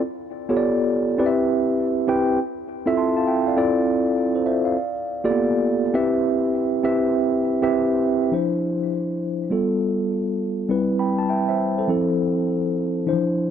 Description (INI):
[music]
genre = R&B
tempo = 101 BPM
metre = 4/4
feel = swing 64% on 16ths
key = unclear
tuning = A4 = 440 Hz
[part]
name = mellow tine electric piano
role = solo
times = 0.0-13.5 s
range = E3 to C6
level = -19 LUFS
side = equal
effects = slow stereo tremolo, ping-pong delay
[sound]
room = light reverb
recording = dark, warm production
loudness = -19 LUFS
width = side -9 dB against mid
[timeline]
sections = 0.0-8.3 A section; 8.3-13.5 B section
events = none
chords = 0.0 G9; 1.2 Cmaj7; 2.4 Fmaj7; 3.6 Dm9; 4.8 G9; 5.9 Cmaj7; 8.3 Dm9; 9.5 G9; 10.7 Cmaj7; 11.9 Fmaj7